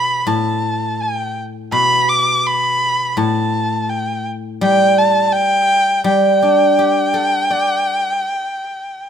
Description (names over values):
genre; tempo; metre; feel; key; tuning
chinese traditional; 82 BPM; 4/4; rubato; G gong mode; A4 = 440 Hz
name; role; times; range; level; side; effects
rich erhu; melody; 0.0-9.1 s; G5 to D6; -16 LUFS; equal; none
guzheng; accompaniment; 0.0-9.0 s; A2 to D5; -17 LUFS; equal; none
room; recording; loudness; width
light reverb; close, detailed microphones; -14 LUFS; side -8 dB against mid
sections
0.0-9.1 A section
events
none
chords
none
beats
0.28 1.01 | 1.74 2.47 3.20 3.91 | 4.62 5.33 6.06 6.78 | 7.50 8.24 8.97